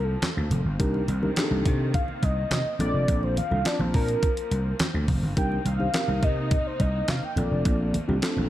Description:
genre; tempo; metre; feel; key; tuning
early-eighties boogie funk; 105 BPM; 4/4; straight; C dorian; A4 = 440 Hz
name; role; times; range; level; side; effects
warm velvety synth lead; melody; 0.0-8.2 s; A4 to G5; -30 LUFS; equal; chorus
clear studio string section; sustained chords; 0.0-8.5 s; C3 to Eb4; -37 LUFS; equal; none
vintage slap bass; bass; 0.0-8.5 s; F1 to C3; -26 LUFS; equal; none
clean 12-bit digital drum machine; drums; 0.2-8.4 s; handclaps, hi-hat, kick drum, snare drum; -27 LUFS; equal; none
congas; percussion; 0.2-8.5 s; none; -33 LUFS; right 2 dB; none
mellow tine electric piano; accompaniment; 0.8-8.5 s; C4 to A5; -30 LUFS; left 1 dB; none
room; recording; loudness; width
light reverb; dark, warm production; -22 LUFS; side -13 dB against mid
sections
0.0-8.5 A section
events
soft synth lead solo 0.0-8.5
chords
0.0 Bbmaj9; 0.8 Cm9; 2.8 Bbmaj9; 5.4 Cm9; 7.4 Bbmaj9

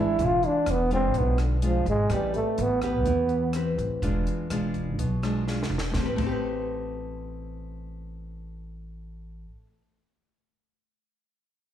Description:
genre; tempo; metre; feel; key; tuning
bossa nova; 125 BPM; 4/4; straight; A minor; A4 = 440 Hz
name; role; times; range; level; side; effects
warm trombone; melody; 0.0-3.5 s; D3 to F4; -25 LUFS; right 2 dB; slapback echo
nylon-string guitar; accompaniment; 0.0-9.8 s; B2 to B4; -30 LUFS; left 2 dB; slapback echo
upright bass; bass; 0.0-9.4 s; E1 to E2; -29 LUFS; equal; none
compact cocktail drum kit; drums; 0.2-6.3 s; crash cymbal, hi-hat, kick drum, rim click, snare drum; -36 LUFS; equal; none
room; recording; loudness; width
light reverb, small room ambience; live gig heard through the venue's PA, club reverb; -23 LUFS; side -10 dB against mid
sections
0.0-5.9 A section; 5.9-9.8 B section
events
trombone solo 0.0-5.9; drum fill 5.5-5.9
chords
0.2 E7b9; 2.1 Am9; 4.0 E7b9; 5.9 Am9

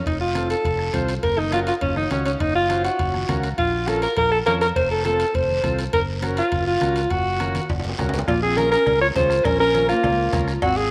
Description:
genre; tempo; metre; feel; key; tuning
latin, cumbia; 204 BPM; 4/4; straight; unclear; A4 = 439 Hz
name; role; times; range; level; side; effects
warm alto saxophone; melody; 0.0-10.9 s; Db4 to Db5; -23 LUFS; equal; none
fingered electric bass; bass; 0.1-10.9 s; F1 to F2; -29 LUFS; equal; none
bombo; percussion; 0.1-10.8 s; none; -33 LUFS; equal; none
congas; percussion; 0.1-10.8 s; none; -36 LUFS; equal; none
guiro; percussion; 0.1-10.9 s; none; -40 LUFS; equal; none
timbales and cowbell; percussion; 0.1-10.8 s; none; -38 LUFS; equal; none
combo organ; accompaniment; 0.3-10.5 s; C4 to Db5; -33 LUFS; equal; none
breathy clarinet; second line; 8.3-10.9 s; Bb3 to F4; -30 LUFS; equal; none
room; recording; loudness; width
moderate plate reverb, RT60 3.5 s; none; -21 LUFS; mono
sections
0.0-8.3 A section; 8.3-10.9 B section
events
drum fill 7.4-8.3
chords
0.1 F; 1.2 Gb; 3.6 Bbm; 4.8 F; 5.9 Gb; 8.3 Bbm

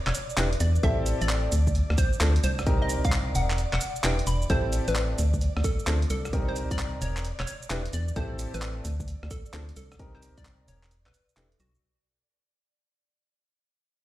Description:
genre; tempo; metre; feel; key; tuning
UK garage, two-step garage; 131 BPM; 4/4; swing 66% on 16ths; unclear; A4 = 441 Hz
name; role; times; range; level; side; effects
ethereal airy pad; sustained chords; 0.0-11.8 s; D5; -39 LUFS; right 2 dB; ensemble chorus, built-in reverb, phaser, sidechain pumping
hollow square pluck; melody; 0.1-11.8 s; F#4 to B5; -35 LUFS; equal; analog chorus, digital delay
organ-like FM bass; bass; 0.1-11.8 s; E1 to E2; -26 LUFS; equal; none
breakbeat sampler-style drum kit; drums; 0.1-11.8 s; handclaps, hi-hat, rim click, shaker; -33 LUFS; right 1 dB; none
warm baby grand piano; stabs; 0.4-11.5 s; C4 to B4; -34 LUFS; left 1 dB; dub echo
electronic kick drum; drums; 0.8-10.4 s; none; -27 LUFS; equal; none
room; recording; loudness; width
light reverb; played on a big sound system in a bare room, large studio reverb; -24 LUFS; side -15 dB against mid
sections
0.0-11.8 A section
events
drop 0.0-11.8; fade-out 4.5-11.8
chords
0.0 E7(no3); 0.8 Am7; 1.5 D7(no3); 2.4 Cm7; 3.6 E7(no3); 4.5 Am7; 5.2 D5; 6.1 Cm7; 7.2 E7(no3); 8.2 Am7; 8.8 D5; 9.8 Cm7; 10.9 E7(no3)

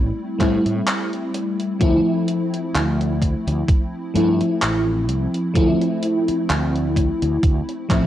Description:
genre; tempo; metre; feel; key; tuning
vaporwave; 64 BPM; 4/4; swing 54% on 16ths; D minor; A4 = 440 Hz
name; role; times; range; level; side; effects
FM electric piano with soft pad layer; accompaniment; 0.0-8.1 s; F3 to E4; -20 LUFS; equal; ensemble chorus, cassette tape, analog delay
fretless electric bass; bass; 0.0-8.1 s; A1 to A2; -23 LUFS; equal; none
electronic kick drum; drums; 0.4-8.1 s; none; -19 LUFS; equal; none
gated 80s digital drum machine; drums; 0.4-8.1 s; handclaps, hi-hat; -26 LUFS; equal; gated reverb
room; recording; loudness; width
light reverb, digital ambience; dry, gritty hardware recording, cassette tape; -18 LUFS; side -12 dB against mid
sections
0.0-8.1 A section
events
none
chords
0.0 Am7; 1.8 Dm9

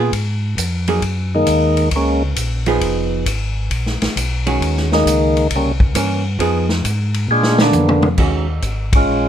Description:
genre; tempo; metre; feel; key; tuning
soul jazz organ trio; 134 BPM; 4/4; swing 67% on 8ths; Eb minor; A4 = 440 Hz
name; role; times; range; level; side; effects
hollow-body jazz guitar; accompaniment; 0.0-8.5 s; D#3 to Ab4; -19 LUFS; right 4 dB; none
mellow tonewheel organ; bass; 0.0-9.3 s; F1 to Bb2; -19 LUFS; equal; slow rotary speaker
vintage drum kit; drums; 0.1-9.0 s; crash cymbal, hi-hat, kick drum, ride cymbal, snare drum, toms; -20 LUFS; equal; none
percussive tonewheel organ; melody; 1.3-2.2, 4.9-9.3 s; Db3 to Ab4; -16 LUFS; equal; slow rotary speaker, plate reverb
room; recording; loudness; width
light reverb; close, detailed microphones; -14 LUFS; side -10 dB against mid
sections
0.0-8.2 A section; 8.2-9.3 B section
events
tonewheel organ solo 0.0-8.2; drum fill 7.3-8.2; band accent 8.9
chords
0.0 Db (rootless); 1.0 Gb69; 2.8 Fm7b5; 3.7 Bmaj13/A#; 4.6 Ebm7; 5.5 C7b9; 6.4 Fm7b5; 7.3 Bb7b9; 8.2 Ebm11

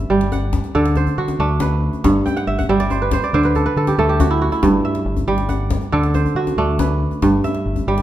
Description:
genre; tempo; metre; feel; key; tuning
west african traditional, West African string and xylophone music; 93 BPM (dotted quarters); 12/8; straight; G major; A4 = 440 Hz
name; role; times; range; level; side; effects
kora; arpeggios; 0.0-8.0 s; G2 to G5; -17 LUFS; right 2 dB; none
deep dub fingered electric bass; bass; 0.0-8.0 s; G1 to D3; -21 LUFS; left 1 dB; none
djembe; percussion; 0.2-8.0 s; none; -24 LUFS; left 4 dB; none
room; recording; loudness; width
moderate recital hall reverb, RT60 1.5 s; dark, warm production; -15 LUFS; side -12 dB against mid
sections
0.0-8.0 A section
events
kora fill 2.3-4.6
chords
0.0 G; 0.7 D; 2.0 G; 3.3 D5; 4.6 Emadd9/G; 5.9 D; 7.2 G

